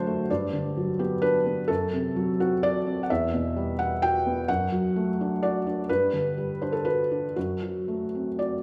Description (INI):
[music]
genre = neoclassical minimalist piano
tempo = 128 BPM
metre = 3/4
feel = rubato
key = unclear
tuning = A4 = 439 Hz
[part]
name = felt-muted upright piano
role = solo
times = 0.0-8.6 s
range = E2 to G5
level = -26 LUFS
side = equal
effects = none
[sound]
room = wet recital hall reverb, RT60 1.7 s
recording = recorded in a church or concert hall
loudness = -26 LUFS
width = mono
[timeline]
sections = 0.0-8.6 A section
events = none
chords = 0.3 Gmaj7; 1.7 F#dim; 3.1 Emadd9; 4.5 D/F#; 5.9 Gmaj7; 7.4 F#dim